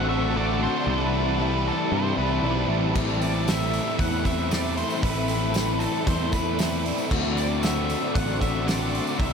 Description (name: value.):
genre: rock, shoegaze and dream pop.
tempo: 115 BPM.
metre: 4/4.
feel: straight.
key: unclear.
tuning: A4 = 440 Hz.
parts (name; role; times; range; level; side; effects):
octave-fuzz lead guitar; melody; 0.0-9.3 s; A4 to F#5; -31 LUFS; left 2 dB; distortion, analog delay.
shimmering ambient pad; sustained chords; 0.0-9.3 s; C4 to C6; -32 LUFS; equal; chorus, built-in reverb.
biting overdriven guitar; riff; 0.0-9.3 s; A2 to F#4; -29 LUFS; right 10 dB; reverse reverb.
overdriven electric guitar; riff; 0.0-9.3 s; A2 to F#4; -28 LUFS; left 7 dB; wide subtle chorus.
picked electric bass; bass; 0.0-9.3 s; A1 to G2; -28 LUFS; equal; none.
loose indie drum kit; drums; 3.0-9.3 s; crash cymbal, hi-hat, kick drum, snare drum; -29 LUFS; equal; none.
tambourine; percussion; 3.0-9.3 s; none; -43 LUFS; left 8 dB; none.
room: wet huge ambient reverb, RT60 7.5 s.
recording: dreamy mix soaked in reverb.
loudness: -22 LUFS.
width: side -6 dB against mid.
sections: 0.0-9.3 A section.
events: none.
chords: 0.0 D7; 0.9 Cadd9; 3.0 Amadd9; 7.1 D7.